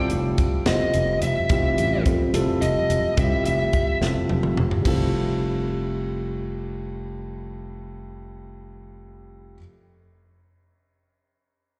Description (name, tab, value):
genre	electric jazz fusion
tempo	72 BPM (dotted quarters)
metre	6/8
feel	straight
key	F major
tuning	A4 = 442 Hz
part	smooth overdriven lead guitar	melody	0.0-4.0 s	Eb5 to E5	-28 LUFS	equal	slapback echo, tape echo
part	dark baby grand piano	accompaniment	0.0-9.6 s	G3 to C5	-30 LUFS	equal	slapback echo
part	sustaining fretless electric bass	bass	0.1-9.6 s	F1 to F2	-29 LUFS	equal	none
part	crisp fusion drum kit	drums	0.1-5.0 s	hi-hat, kick drum, ride cymbal, snare drum, toms	-28 LUFS	equal	none
room	light reverb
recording	live gig heard through the venue's PA, recital hall reverb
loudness	-23 LUFS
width	mono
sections	0.0-4.9 A section; 4.9-8.2 B section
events	lead electric guitar solo 0.0-4.9; drum fill 4.0-4.9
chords	0.0 Fmaj9